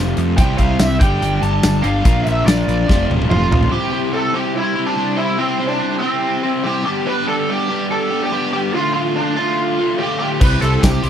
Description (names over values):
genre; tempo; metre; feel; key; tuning
classic rock; 144 BPM; 4/4; straight; unclear; A4 = 440 Hz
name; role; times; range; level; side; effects
overdriven electric guitar; riff; 0.0-11.1 s; D2 to C5; -20 LUFS; left 1 dB; none
fuzz picked electric bass; bass; 0.0-3.7, 10.4-11.1 s; D1 to F2; -18 LUFS; equal; overdrive
huge arena drum kit; drums; 0.2-3.7, 10.4-11.1 s; crash cymbal, hi-hat, kick drum, snare drum, tambourine, toms; -17 LUFS; equal; none
lead guitar through a small cranked amp; melody; 0.4-11.1 s; C4 to A5; -20 LUFS; right 1 dB; wah, overdrive
room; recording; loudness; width
little or no reverb; dry, close 1970s-style studio recording; -15 LUFS; side -9 dB against mid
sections
0.0-3.7 A section; 3.7-11.1 B section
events
drum fill 2.9-3.7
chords
0.4 C; 1.0 Gsus2; 2.1 Bb; 2.9 F; 3.7 C; 6.9 G; 8.7 Dm; 10.4 C